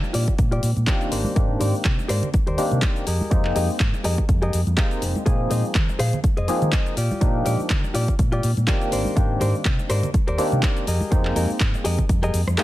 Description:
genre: filtered disco house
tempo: 123 BPM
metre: 4/4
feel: swing 56% on 16ths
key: F dorian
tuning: A4 = 436 Hz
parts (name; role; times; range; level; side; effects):
- clav; accompaniment; 0.0-12.6 s; Eb3 to G5; -27 LUFS; equal; phaser, vintage 12-bit sampler grit, sidechain pumping, low-pass filter
- direct-recorded clean electric guitar; riff; 0.0-12.6 s; F4 to F5; -28 LUFS; left 1 dB; sidechain pumping, low-pass filter
- house drum kit; drums; 0.0-12.6 s; handclaps, hi-hat, rim click, shaker; -29 LUFS; left 1 dB; small room ambience
- congas and tube shaker; percussion; 0.0-12.6 s; none; -34 LUFS; equal; none
- hollow-body short-scale fingered electric bass; bass; 0.1-12.6 s; F1 to Eb3; -23 LUFS; equal; sidechain pumping, low-pass filter
- electronic kick drum; drums; 0.3-12.2 s; none; -21 LUFS; equal; small room ambience
room: little or no reverb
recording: none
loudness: -19 LUFS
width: side -15 dB against mid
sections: 0.0-12.6 A section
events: filter sweep 0.0-12.6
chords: 0.0 Ebmaj9/Bb; 1.1 Abmaj9#11; 3.1 Fm11; 5.3 Bb9sus4; 7.0 Ebmaj9/Bb; 8.9 Abmaj9#11; 10.9 Fm11

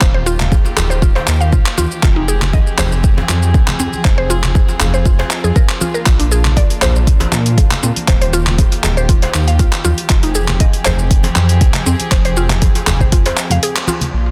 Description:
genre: afro house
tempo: 119 BPM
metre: 4/4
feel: straight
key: F dorian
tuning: A4 = 439 Hz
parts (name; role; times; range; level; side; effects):
- rich chamber string section; sustained chords; 0.0-14.3 s; Eb3 to Ab4; -27 LUFS; equal; sidechain pumping
- mallet-like synth pluck; arpeggios; 0.0-14.0 s; C4 to F5; -24 LUFS; equal; chorus, sidechain pumping, delay
- dark detuned saw bass; bass; 0.0-14.3 s; Eb1 to Bb2; -18 LUFS; equal; sidechain pumping
- deep house drum kit; drums; 0.0-14.1 s; handclaps, hi-hat, shaker; -22 LUFS; equal; overdrive, low-pass filter on snare, low-pass filter on perc, low-pass filter on cymbals, low-pass filter on hats, low-pass filter on room
- electronic kick drum; drums; 0.0-13.2 s; none; -14 LUFS; equal; none
- congas; percussion; 0.0-14.1 s; none; -27 LUFS; equal; none
- djembe; percussion; 0.5-13.4 s; none; -28 LUFS; equal; none
room: little or no reverb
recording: dense, heavily limited modern master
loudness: -14 LUFS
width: mono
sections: 0.0-14.1 A section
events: break 13.6-14.1; band accent 13.8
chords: 0.0 Eb; 2.0 Fm; 6.1 Bb; 8.1 Eb; 10.1 Fm

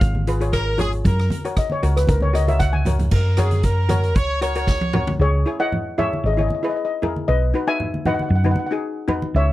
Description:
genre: calypso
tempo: 116 BPM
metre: 4/4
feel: swing 53% on 16ths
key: B major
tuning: A4 = 442 Hz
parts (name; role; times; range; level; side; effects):
- steel pan; melody; 0.0-9.5 s; G#4 to G#5; -23 LUFS; left 2 dB; none
- steel pan; accompaniment; 0.0-9.3 s; D#4 to C#5; -26 LUFS; left 2 dB; none
- hollow-body short-scale fingered electric bass; bass; 0.0-9.5 s; G#1 to F#2; -19 LUFS; equal; none
- street-band drum kit; drums; 0.0-5.2 s; crash cymbal, hi-hat, kick drum, rim click, snare drum, toms; -22 LUFS; equal; none
- congas; percussion; 0.1-9.3 s; none; -26 LUFS; right 1 dB; none
- brilliant horn section; second line; 0.5-5.2 s; G#4 to C#5; -25 LUFS; right 1 dB; none
room: little or no reverb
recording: dry, close 1970s-style studio recording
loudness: -18 LUFS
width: side -16 dB against mid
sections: 0.0-3.1 A section; 3.1-5.2 B section; 5.2-9.5 C section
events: steel pan solo 0.0-3.1; drum fill 2.5-3.1, 4.7-5.2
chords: 0.0 C#; 1.0 F#; 5.2 C#madd9; 7.3 B

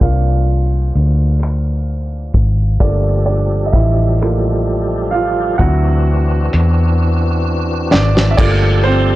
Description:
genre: slow six-eight R&B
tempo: 43 BPM (dotted quarters)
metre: 6/8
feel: straight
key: G dorian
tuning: A4 = 440 Hz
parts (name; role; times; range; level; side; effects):
- clear grand piano; accompaniment; 0.0-9.2 s; F#3 to F#5; -20 LUFS; right 4 dB; none
- vintage muted fingered electric bass; bass; 0.0-9.2 s; G1 to E2; -14 LUFS; left 1 dB; tube saturation
- cloth-damped thuddy drum kit; drums; 0.0-8.6 s; crash cymbal, finger snaps, hi-hat, kick drum, snare drum; -15 LUFS; equal; none
- tonewheel organ; sustained chords; 2.8-9.2 s; E3 to A4; -21 LUFS; equal; chorus vibrato, fast rotary speaker
room: small room reverb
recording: blown-out, overdriven recording, overdrive, low-pass filter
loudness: -12 LUFS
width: side -16 dB against mid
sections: 0.0-8.4 A section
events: grand piano solo 0.0-8.4; filter sweep 0.0-8.4; drum fill 7.0-8.4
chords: 0.0 C9sus4; 2.8 Gm9; 5.6 D9; 8.4 Gm9

